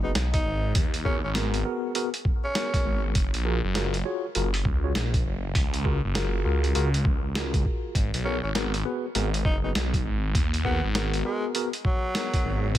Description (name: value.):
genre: glitch hop.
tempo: 100 BPM.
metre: 4/4.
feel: swing 62% on 16ths.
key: G# dorian.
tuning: A4 = 442 Hz.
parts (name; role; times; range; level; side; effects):
growling tenor saxophone; melody; 0.0-3.0, 8.2-12.7 s; F#3 to D#4; -33 LUFS; equal; ping-pong delay.
mellow tine electric piano; stabs; 0.0-12.7 s; B3 to C#5; -32 LUFS; left 1 dB; medium stereo tremolo, sidechain pumping, ping-pong delay.
phased detuned saw bass; bass; 0.0-12.8 s; F#1 to D#2; -26 LUFS; equal; phaser.
boom bap sampler-style drum kit; drums; 0.2-12.8 s; hi-hat, snare drum; -31 LUFS; equal; none.
electronic kick drum; drums; 0.3-12.8 s; none; -26 LUFS; equal; none.
room: little or no reverb.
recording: none.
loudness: -24 LUFS.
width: side -13 dB against mid.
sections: 0.0-12.8 A section.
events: none.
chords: 0.0 G#m9; 3.2 F#maj9; 8.0 G#m9.